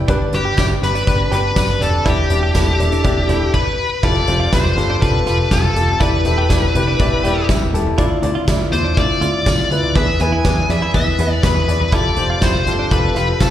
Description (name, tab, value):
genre	piano-driven pop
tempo	122 BPM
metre	4/4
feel	straight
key	unclear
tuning	A4 = 437 Hz
part	clear upright piano	accompaniment	0.0-13.5 s	G2 to E5	-21 LUFS	left 2 dB	slapback echo
part	plucky analog bass	bass	0.0-13.5 s	E1 to F2	-19 LUFS	equal	none
part	direct-recorded clean electric guitar	riff	0.1-13.3 s	B3 to G4	-27 LUFS	right 9 dB	slapback echo
part	loose indie drum kit	drums	0.1-13.5 s	crash cymbal, hi-hat, kick drum, snare drum, toms	-19 LUFS	equal	none
part	high-gain lead guitar	melody	0.3-13.5 s	G4 to G#5	-20 LUFS	left 2 dB	distortion, slapback echo
part	tambourine	percussion	0.6-13.5 s	none	-34 LUFS	right 3 dB	none
room	little or no reverb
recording	live gig heard through the venue's PA, recital hall reverb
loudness	-14 LUFS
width	side -11 dB against mid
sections	0.0-4.0 A section; 4.0-13.5 B section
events	stop 3.5-4.0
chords	0.1 G; 2.1 Em7; 4.0 Fadd9; 6.0 Em7; 8.0 Dmadd9; 10.0 E; 11.9 Fadd9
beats	| 0.09 0.58 1.07 1.57 | 2.06 2.55 3.05 3.54 | 4.03 4.53 5.02 5.51 | 6.01 6.50 7.00 7.49 | 7.98 8.47 8.97 9.46 | 9.96 10.45 10.94 11.44 | 11.93 12.42 12.92 13.41